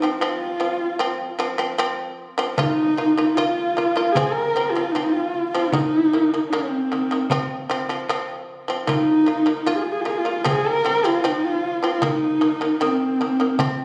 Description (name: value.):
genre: mongolian traditional, Mongolian folk.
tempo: 76 BPM.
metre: 4/4.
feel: straight.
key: F yu mode.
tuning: A4 = 439 Hz.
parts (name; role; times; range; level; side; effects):
warm horsehead fiddle; melody; 0.0-13.8 s; C4 to Bb4; -23 LUFS; equal; none.
shamisen; arpeggios; 0.0-13.8 s; Eb3 to F4; -26 LUFS; equal; none.
frame drum; percussion; 2.6-13.8 s; none; -31 LUFS; equal; none.
room: wet recital hall reverb, RT60 1.6 s.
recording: recorded on a phone in the room, studio reverb, compression.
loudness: -21 LUFS.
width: mono.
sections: 0.0-2.6 A section; 2.6-13.8 B section.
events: none.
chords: 0.0 F5; 2.6 Bb5; 4.2 F5; 5.7 Eb5; 7.3 F5; 8.9 Bb5; 10.5 F5; 12.0 Eb5.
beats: 0.21 1.00 1.79 | 2.58 3.37 4.16 4.95 | 5.73 6.52 7.31 8.09 | 8.88 9.67 10.45 11.24 | 12.02 12.80 13.59.